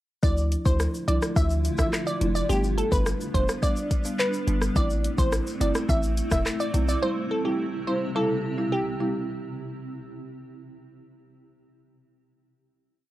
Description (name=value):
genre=dancehall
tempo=106 BPM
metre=4/4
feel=straight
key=C major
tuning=A4 = 440 Hz
part: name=glassy wavetable pluck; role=melody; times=0.2-9.1 s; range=G4 to E5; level=-29 LUFS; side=equal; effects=chorus, analog delay
part: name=folk marimba with soft mallets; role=accompaniment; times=0.2-9.2 s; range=F3 to E4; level=-30 LUFS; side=right 1 dB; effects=sidechain pumping
part: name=granular cloud pad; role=sustained chords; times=0.9-9.3 s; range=C3 to G4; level=-33 LUFS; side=right 1 dB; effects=built-in reverb, sidechain pumping
part: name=warm 808-style bass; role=bass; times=0.2-7.0 s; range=E1 to D2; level=-26 LUFS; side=equal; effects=none
part: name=afro-pop drum kit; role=drums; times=0.2-7.0 s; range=handclaps, hi-hat, kick drum, rim click, shaker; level=-26 LUFS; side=equal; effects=none
part: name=tube shaker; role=percussion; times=0.2-7.0 s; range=none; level=-43 LUFS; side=left 3 dB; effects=none
room=digital ambience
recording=dry, gritty hardware recording, cassette tape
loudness=-23 LUFS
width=side -15 dB against mid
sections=0.2-9.3 chorus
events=none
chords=0.2 Dmadd9; 2.5 G; 4.8 Am; 7.0 C